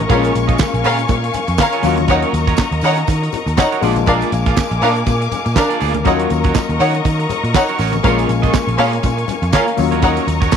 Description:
disco; 121 BPM; 4/4; swing 56% on 16ths; Eb minor; A4 = 441 Hz
electric guitar at the edge of break-up; accompaniment; 0.0-10.6 s; Bb3 to F5; -23 LUFS; right 13 dB; vibrato effect
warm baby grand piano; accompaniment; 0.0-10.6 s; Gb3 to F4; -22 LUFS; left 14 dB
clear symphonic string section; sustained chords; 0.0-10.6 s; Bb4 to D6; -22 LUFS; left 3 dB
picked electric bass; bass; 0.0-10.5 s; A1 to Eb3; -19 LUFS; equal
rich studio string section; second line; 0.1-10.1 s; Db4 to Gb5; -18 LUFS; left 1 dB
damped 70s drum kit; drums; 0.1-10.6 s; handclaps, hi-hat, kick drum, snare drum; -18 LUFS; right 3 dB
congas; percussion; 0.1-10.6 s; -27 LUFS; left 9 dB
tambourine; percussion; 0.1-10.6 s; -37 LUFS; right 17 dB
light reverb, small room ambience; 1960s-style stereo with parts hard left and right; -13 LUFS; side -7 dB against mid
0.0-10.6 A section
0.1 Bbm7; 1.8 Ebm7; 3.8 Bb7; 6.1 Ebm7; 8.0 Bbm7; 9.8 Ebm7

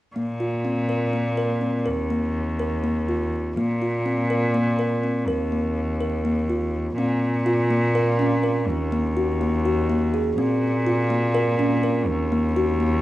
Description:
contemporary instrumental, contemporary; 247 BPM (eighths); 7/8; straight; A4 = 444 Hz
kalimba; arpeggios; 0.2-13.0 s; Bb3 to Bb4; -23 LUFS; equal
bright cello; bass; 0.2-13.0 s; Eb2 to Bb2; -24 LUFS; equal
moderate studio reverb, RT60 0.6 s; vinyl crackle; -20 LUFS; side -15 dB against mid
0.2-7.0 A section; 7.0-13.0 B section
0.2 Bbsus2; 1.9 Eb5; 3.6 Bbsus2; 5.3 Eb5; 7.0 Bbsus2; 8.7 Ebm; 10.4 Bbsus2; 12.1 Ebm

